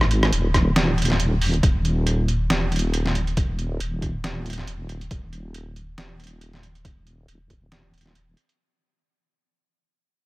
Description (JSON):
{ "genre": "deep dubstep", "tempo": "138 BPM", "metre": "4/4", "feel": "swing 56% on 16ths, half-time", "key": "unclear", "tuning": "A4 = 440 Hz", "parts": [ { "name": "deep soft wobble bass", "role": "bass", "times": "0.0-8.4 s", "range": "D#1 to G#1", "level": "-23 LUFS", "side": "equal", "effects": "chorus" }, { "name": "trip hop sampler-style drum kit", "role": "drums", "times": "0.0-8.6 s", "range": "hi-hat, rim click, snare drum", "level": "-25 LUFS", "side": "equal", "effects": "overdrive" }, { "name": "electronic kick drum", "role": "drums", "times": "0.5-7.6 s", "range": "none", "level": "-21 LUFS", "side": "equal", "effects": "overdrive" } ], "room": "little or no reverb", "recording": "none", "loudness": "-20 LUFS", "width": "side -21 dB against mid", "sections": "0.0-8.6 A section", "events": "fade-out 0.0-8.6", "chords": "none" }